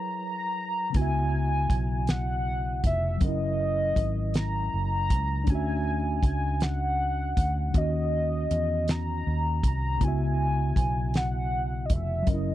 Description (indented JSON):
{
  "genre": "slow six-eight R&B",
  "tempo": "53 BPM (dotted quarters)",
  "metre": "6/8",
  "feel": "straight",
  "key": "C# dorian",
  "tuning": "A4 = 440 Hz",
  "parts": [
    { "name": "warm velvety synth lead", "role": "melody", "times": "0.0-12.5 s", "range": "D#5 to A#5", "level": "-30 LUFS", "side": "equal", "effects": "chorus" },
    { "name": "mellow tine electric piano", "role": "accompaniment", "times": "0.0-12.5 s", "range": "C#3 to E5", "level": "-33 LUFS", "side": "equal", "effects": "medium stereo tremolo" },
    { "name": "damped 70s drum kit", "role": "drums", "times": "0.9-12.4 s", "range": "hi-hat, kick drum, snare drum", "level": "-25 LUFS", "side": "equal", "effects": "none" },
    { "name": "vintage muted fingered electric bass", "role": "bass", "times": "1.0-12.5 s", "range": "E#1 to E2", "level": "-28 LUFS", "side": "equal", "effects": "none" }
  ],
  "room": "little or no reverb",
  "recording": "dry, close 1970s-style studio recording",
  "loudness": "-24 LUFS",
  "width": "side -14 dB against mid",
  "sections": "1.0-12.5 A section",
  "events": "break 0.0-1.0",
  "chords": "0.0 F#9sus4; 1.0 C#m7; 3.2 F#7; 5.5 Dmaj9; 7.7 D#m7; 10.0 C#m7"
}